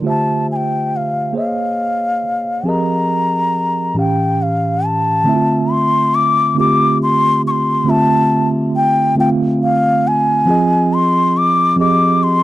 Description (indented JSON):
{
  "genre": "R&B",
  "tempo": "46 BPM (dotted quarters)",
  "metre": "6/8",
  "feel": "straight",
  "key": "D minor from 5.3 s",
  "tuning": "A4 = 440 Hz",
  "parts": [
    { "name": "mellow tine electric piano", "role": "accompaniment", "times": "0.0-12.4 s", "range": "A2 to F5", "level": "-16 LUFS", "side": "right 2 dB", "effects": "medium stereo tremolo" },
    { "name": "mellow bansuri", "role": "melody", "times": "0.1-12.4 s", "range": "F5 to D6", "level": "-15 LUFS", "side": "left 2 dB", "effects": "none" }
  ],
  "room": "light reverb",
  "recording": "dry, close 1970s-style studio recording",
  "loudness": "-13 LUFS",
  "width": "side -15 dB against mid",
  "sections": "0.0-5.3 A section; 5.3-12.4 B section",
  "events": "none",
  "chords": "0.0 Dm11; 1.3 Bbm11; 2.6 Fm11; 3.9 A7b13; 5.3 Dm9; 10.5 Fm9"
}